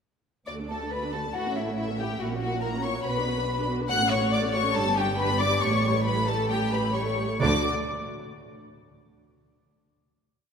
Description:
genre	quick classical-period movement for string orchestra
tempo	138 BPM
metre	4/4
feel	uneven beats, rubato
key	D major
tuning	A4 = 440 Hz
part	dark studio violin section	melody	0.5-7.7 s	E5 to F#6	-29 LUFS	left 3 dB	none
part	warm chamber violin section	second line	0.5-7.7 s	E4 to F#5	-30 LUFS	left 3 dB	none
part	warm chamber viola section	accompaniment	0.5-7.7 s	G3 to B4	-32 LUFS	right 2 dB	none
part	clear chamber double bass section	bass	0.5-7.7 s	G1 to D2	-32 LUFS	right 3 dB	none
part	dark chamber cello section	bass	0.5-7.7 s	D2 to D3	-32 LUFS	right 2 dB	none
room	wet concert hall reverb, RT60 2.6 s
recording	none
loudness	-24 LUFS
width	side -6 dB against mid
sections	0.5-7.4 A section; 7.4-9.2 final chord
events	none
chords	0.5 D; 1.4 A; 2.2 F#7/A#; 3.1 Bm; 3.9 F#m/A; 4.7 G; 5.6 A7; 7.4 D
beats	| 0.48 0.92 1.35 1.78 | 2.21 2.63 3.06 3.48 | 3.90 4.32 4.75 5.18 | 5.62 6.06 6.50 6.95 | 7.41

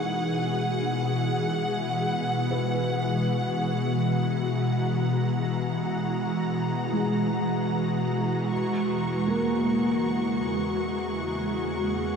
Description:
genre	ambient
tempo	free time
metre	none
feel	none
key	E lydian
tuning	A4 = 440 Hz
part	ethereal airy pad	sustained chords	0.0-12.2 s	E2 to A#5	-26 LUFS	left 1 dB	ensemble chorus, built-in reverb, shimmer reverb
part	felt-muted upright piano	arpeggios	0.0-12.2 s	G#3 to B4	-31 LUFS	equal	ensemble chorus, analog delay, shimmer reverb
part	bowed-like drone	drone	0.1-12.2 s	E3	-38 LUFS	right 1 dB	none
part	warm studio violin section	texture	0.0-12.2 s	F#5 to C#6	-34 LUFS	equal	shimmer reverb
room	wet lush hall reverb, RT60 2.9 s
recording	dreamy mix soaked in reverb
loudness	-24 LUFS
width	side -6 dB against mid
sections	0.0-12.2 A section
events	fade-out on violin section 0.0-12.2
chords	0.0 Eadd9; 8.5 F#add9/E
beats	free time

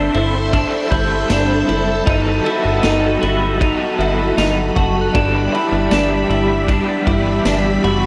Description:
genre	dream pop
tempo	78 BPM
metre	4/4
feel	straight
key	G major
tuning	A4 = 440 Hz
part	crunchy overdriven guitar	accompaniment	0.0-8.1 s	G2 to A4	-26 LUFS	equal	tremolo, analog chorus
part	phased string machine	sustained chords	0.0-8.1 s	G3 to C6	-23 LUFS	equal	ensemble chorus, phaser
part	semi-hollow electric guitar	arpeggios	0.0-8.1 s	D4 to F#4	-22 LUFS	equal	analog chorus, delay
part	plucky analog bass	bass	0.0-8.1 s	F#1 to G1	-23 LUFS	equal	none
part	vintage drum kit	drums	0.1-8.0 s	kick drum, ride cymbal, snare drum, tambourine	-25 LUFS	equal	none
part	glockenspiel with soft plastic mallets	texture	0.9-8.1 s	A5 to G6	-32 LUFS	equal	delay
room	wet lush hall reverb, RT60 2.6 s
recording	dreamy mix soaked in reverb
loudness	-16 LUFS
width	mono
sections	0.0-8.1 A section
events	none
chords	0.0 Am/G; 2.1 B7/G; 5.1 G6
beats	0.53 1.30 | 2.07 2.84 3.61 4.38 | 5.15 5.92 6.68 7.45

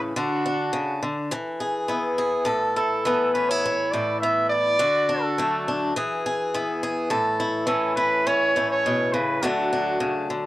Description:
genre	highlife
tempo	104 BPM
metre	4/4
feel	straight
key	A major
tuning	A4 = 440 Hz
part	picked swing-style acoustic guitar	accompaniment	0.0-10.5 s	A2 to A4	-23 LUFS	left 1 dB	cassette tape
part	warm trumpet	melody	0.2-10.3 s	F#4 to E5	-23 LUFS	right 1 dB	cassette tape, plate reverb
room	wet booth ambience, RT60 0.2 s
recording	home recording on cassette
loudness	-21 LUFS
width	side -16 dB against mid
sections	0.0-10.5 A section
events	none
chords	0.2 D; 1.3 E; 2.5 Asus2; 4.8 D; 5.9 E; 7.1 Aadd9; 9.4 D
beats	| 0.15 0.73 1.31 1.89 | 2.47 3.05 3.63 4.21 | 4.79 5.37 5.95 6.53 | 7.10 7.68 8.26 8.84 | 9.42 10.01

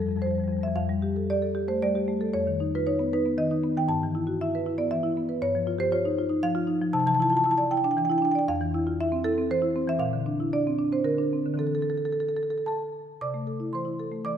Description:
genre	classical, contemporary piece for solo marimba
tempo	116 BPM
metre	3/4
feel	rubato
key	F major, C major from 6.9 s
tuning	A4 = 440 Hz
part	marimba with medium mallets	solo	0.0-14.4 s	F2 to D6	-24 LUFS	equal	none
room	moderate scoring stage reverb, RT60 1.8 s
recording	minimal, uncompressed stereo recording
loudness	-24 LUFS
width	side -9 dB against mid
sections	0.8-13.2 A section; 13.2-14.4 B section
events	none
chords	0.0 Fadd9; 0.8 F69; 2.3 Db9/F; 3.9 G69; 5.4 Ebadd9/G; 6.9 Cadd9; 8.5 F5; 10.0 Bbadd9; 11.6 Dsus2; 13.2 C6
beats	0.22 | 0.77 1.29 1.82 | 2.33 2.85 3.38 | 3.89 4.40 4.91 | 5.42 5.93 6.44 | 6.95 7.46 7.96 | 8.47 8.97 9.48 | 9.99 10.51 11.03 | 11.57 12.11 12.65 | 13.20 13.72 14.23

